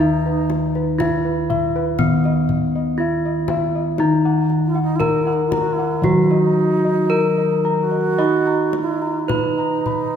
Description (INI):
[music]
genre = Javanese gamelan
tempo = 52-60 BPM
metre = 4/4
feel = straight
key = Eb pelog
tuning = A4 = 441 Hz
[part]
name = gamelan-type bronze metallophone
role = melody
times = 0.0-10.2 s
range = Cb4 to Eb5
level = -21 LUFS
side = left 3 dB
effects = none
[part]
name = bright low xiao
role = second line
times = 0.0-10.2 s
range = Eb4 to Bb4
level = -24 LUFS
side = right 5 dB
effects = none
[part]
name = gamelan-type bronze metallophone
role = accompaniment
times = 0.0-10.2 s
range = Eb3 to Eb4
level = -23 LUFS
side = right 2 dB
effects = none
[part]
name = gamelan-type bossed gongs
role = arpeggios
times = 0.0-10.2 s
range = Cb5 to Cb6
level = -26 LUFS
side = left 3 dB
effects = none
[part]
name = gamelan-type bossed gongs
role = bass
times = 0.0-10.2 s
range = Eb2 to Eb5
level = -24 LUFS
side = right 1 dB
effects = none
[part]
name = kendang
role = percussion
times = 0.5-10.1 s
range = none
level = -28 LUFS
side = left 3 dB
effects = none
[sound]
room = moderate concert hall reverb, RT60 2.3 s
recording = none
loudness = -16 LUFS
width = side -8 dB against mid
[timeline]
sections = 0.0-10.2 A section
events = none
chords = none